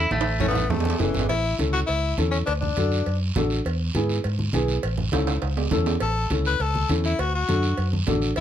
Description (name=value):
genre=latin, cumbia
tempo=203 BPM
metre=4/4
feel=straight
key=A major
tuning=A4 = 440 Hz
part: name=clean electric guitar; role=melody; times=0.0-0.7 s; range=A3 to E4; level=-26 LUFS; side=equal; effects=spring reverb, slapback echo
part: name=dark upright piano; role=accompaniment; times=0.0-8.3 s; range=B3 to A4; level=-27 LUFS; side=left 2 dB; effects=none
part: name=fingered electric bass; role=bass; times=0.0-8.4 s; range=F#1 to G#2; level=-25 LUFS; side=equal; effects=none
part: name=congas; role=percussion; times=0.1-8.2 s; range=none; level=-30 LUFS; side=right 2 dB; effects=none
part: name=guiro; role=percussion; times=0.1-8.4 s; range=none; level=-36 LUFS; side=right 6 dB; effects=none
part: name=timbales and cowbell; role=percussion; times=0.1-8.4 s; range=none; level=-31 LUFS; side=right 6 dB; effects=none
part: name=edgy tenor saxophone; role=second line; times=0.4-3.2, 6.0-8.4 s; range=E3 to B4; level=-26 LUFS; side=left 5 dB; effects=none
room=little or no reverb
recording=close, detailed microphones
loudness=-21 LUFS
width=side -10 dB against mid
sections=0.0-1.3 A section; 1.3-8.4 B section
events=drum fill 0.1-1.3, 5.1-6.0; tenor saxophone solo 1.3-8.4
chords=0.0 A; 2.5 D; 3.7 E; 4.8 A; 7.2 D